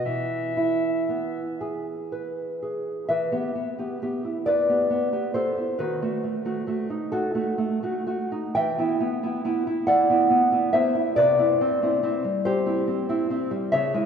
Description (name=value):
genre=romantic duo for clarinet and classical guitar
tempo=38-48 BPM (dotted quarters)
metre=6/8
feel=rubato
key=E major, E minor from 3.1 s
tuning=A4 = 439 Hz
part: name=warm clarinet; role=melody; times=0.1-1.6 s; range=E5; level=-30 LUFS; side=left 4 dB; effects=none
part: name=nylon-string guitar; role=accompaniment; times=0.1-14.1 s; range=C3 to G5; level=-22 LUFS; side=equal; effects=none
room=wet church reverb, RT60 3.4 s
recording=recorded in a church or concert hall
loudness=-22 LUFS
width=side -7 dB against mid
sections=0.0-3.1 A section; 3.1-14.1 B section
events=none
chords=0.1 E; 3.1 Em; 5.8 B7/D#; 8.6 Em; 11.2 C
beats=| 0.05 1.61 | 3.09 4.46 | 5.80 7.13 | 8.57 9.90 | 11.17 12.46 | 13.72